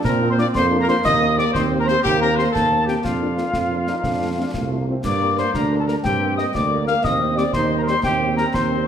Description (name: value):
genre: military-style march for wind band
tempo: 120 BPM (dotted quarters)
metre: 6/8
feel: straight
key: unclear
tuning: A4 = 440 Hz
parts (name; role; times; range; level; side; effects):
- dark trumpet section; melody; 0.0-8.8 s; F4 to F5; -23 LUFS; equal; none
- wooden piccolo; second line; 0.0-8.9 s; F5 to F6; -24 LUFS; left 3 dB; none
- bright trombone section; sustained chords; 0.0-8.9 s; A3 to F4; -26 LUFS; right 2 dB; none
- mellow tuba; bass; 0.0-8.9 s; C2 to Bb2; -22 LUFS; right 3 dB; none
- concert snare drum, concert bass drum and clash cymbals; drums; 0.0-8.7 s; none; -29 LUFS; left 1 dB; none
- mellow French horn section; accompaniment; 0.2-8.8 s; G3 to Bb4; -28 LUFS; left 5 dB; none
room: wet recital hall reverb, RT60 1.3 s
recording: none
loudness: -17 LUFS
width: side -8 dB against mid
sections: 0.0-8.9 A section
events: none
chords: 0.0 Bb; 1.0 Cm7/Eb; 3.0 Bb/F; 4.0 F; 5.0 Gm; 7.0 Cm/Eb